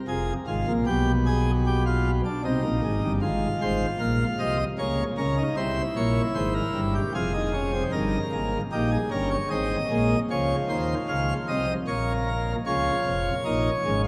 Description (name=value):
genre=classical, baroque-style 3-part fugue for pipe organ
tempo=76 BPM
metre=3/4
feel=straight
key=F minor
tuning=A4 = 440 Hz
part: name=pipe organ, plenum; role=solo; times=0.1-14.1 s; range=F1 to F5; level=-26 LUFS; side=equal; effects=none
room=wet cathedral reverb, RT60 5.3 s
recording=in a vast, echoing space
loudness=-26 LUFS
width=mono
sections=0.0-7.9 A section; 7.9-14.1 B section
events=none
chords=0.1 Fm; 0.9 G7/B; 2.4 Cm; 3.2 Fm/Ab; 4.8 Bbm/Db; 5.6 C7; 7.2 Fm; 7.9 Eb/G; 9.5 Ab; 10.3 Db; 11.9 Bbm